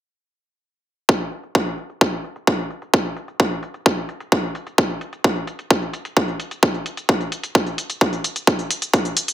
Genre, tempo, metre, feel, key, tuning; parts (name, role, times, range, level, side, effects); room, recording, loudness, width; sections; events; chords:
EDM, festival progressive house; 130 BPM; 4/4; straight
electronic hi-hat; drums; 1.1-9.3 s; -25 LUFS; equal; low-pass filter on hats, low-pass filter on room
electronic kick drum; drums; 1.1-9.0 s; -17 LUFS; equal; high-pass filter on kick, high-pass filter on room
little or no reverb; dense, heavily limited modern master; -19 LUFS; side -13 dB against mid
1.1-9.3 A section
filter sweep on drum 1.1-9.3